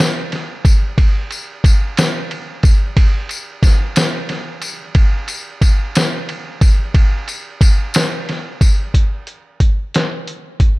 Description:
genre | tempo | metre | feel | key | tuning
gospel | 60 BPM (dotted quarters) | 6/8 | straight | none | none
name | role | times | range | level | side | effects
lo-fi sampler-style drum kit | drums | 0.0-10.8 s | hi-hat, kick drum, ride cymbal, snare drum | -14 LUFS | equal | none
tambourine | percussion | 0.7-8.9 s | none | -26 LUFS | left 4 dB | none
room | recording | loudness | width
little or no reverb | none | -13 LUFS | side -22 dB against mid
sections
0.0-8.9 A section; 8.9-10.8 B section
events
none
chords
none

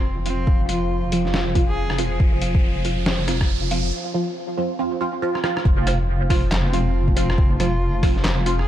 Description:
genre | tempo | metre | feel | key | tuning
deep dubstep | 139 BPM | 4/4 | swing 61% on 16ths, half-time | unclear | A4 = 440 Hz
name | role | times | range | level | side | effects
dark cello | melody | 0.0-2.1, 6.6-8.7 s | C4 to Ab4 | -31 LUFS | left 2 dB | dub echo
overtone-sweeping drone | sustained chords | 0.0-8.7 s | F3 to F4 | -30 LUFS | equal | chorus, built-in reverb
deep soft wobble bass | bass | 0.0-8.7 s | F1 | -23 LUFS | equal | chorus
riser and impact | sound effects | 0.7-7.4 s | none | -33 LUFS | right 1 dB | none
filtered dub chord stab | stabs | 0.3-8.6 s | F3 to F4 | -26 LUFS | right 2 dB | phaser, ensemble chorus, dub echo
trip hop sampler-style drum kit | drums | 0.3-8.7 s | handclaps, hi-hat, rim click, snare drum | -26 LUFS | left 1 dB | none
electronic kick drum | drums | 0.5-8.1 s | none | -19 LUFS | equal | none
room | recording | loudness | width
little or no reverb | dark, warm production | -18 LUFS | side -12 dB against mid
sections
0.0-5.7 A section; 5.7-8.7 B section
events
build-up 0.0-5.7; filter sweep on synth stab 0.0-5.7; riser 0.7-3.9; break 3.9-5.7; drum fill 5.3-5.7; drop 5.7-8.7; impact 5.7-7.4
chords
0.0 F5

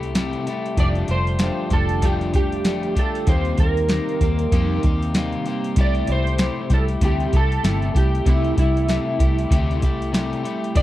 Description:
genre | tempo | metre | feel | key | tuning
indie pop, bedroom pop | 96 BPM | 4/4 | swing 60% on 16ths | C major | A4 = 440 Hz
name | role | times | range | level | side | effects
electric guitar at the edge of break-up | accompaniment | 0.0-10.8 s | C3 to G4 | -26 LUFS | left 4 dB | lush chorus, warbly pitch drift
warm analog pad | sustained chords | 0.0-10.8 s | C3 to F4 | -30 LUFS | right 2 dB | chorus
vintage muted fingered electric bass | bass | 0.0-10.8 s | F1 to F2 | -22 LUFS | equal | none
soft vintage rhythm box | drums | 0.0-10.8 s | hi-hat, kick drum, snare drum | -20 LUFS | equal | overdrive
electric slide guitar | melody | 0.8-10.8 s | E4 to D5 | -25 LUFS | right 2 dB | analog chorus, slapback echo
room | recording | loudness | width
little or no reverb | dry, close 1970s-style studio recording | -18 LUFS | side -15 dB against mid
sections
0.0-10.8 A section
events
none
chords
0.0 C6; 0.8 F69; 3.3 Eb6; 5.8 C6

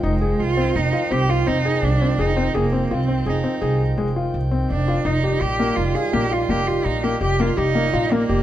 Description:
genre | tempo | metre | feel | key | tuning
contemporary instrumental, chamber music in an uneven meter | 167 BPM | 7/4 | straight | F dorian | A4 = 439 Hz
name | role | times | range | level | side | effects
rich cello | melody | 0.0-8.4 s | Ab3 to Ab4 | -23 LUFS | right 5 dB | none
pedal harmonium | sustained chords | 0.0-8.4 s | Eb3 to G5 | -30 LUFS | right 1 dB | none
felt-muted upright piano | arpeggios | 0.0-8.4 s | Ab3 to Ab4 | -23 LUFS | left 4 dB | none
upright bass | bass | 0.0-8.4 s | F1 to C2 | -22 LUFS | equal | none
room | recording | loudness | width
light reverb | close, detailed microphones | -18 LUFS | side -12 dB against mid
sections
0.0-8.4 A section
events
none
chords
0.0 Fm9; 5.1 Ebadd9/F

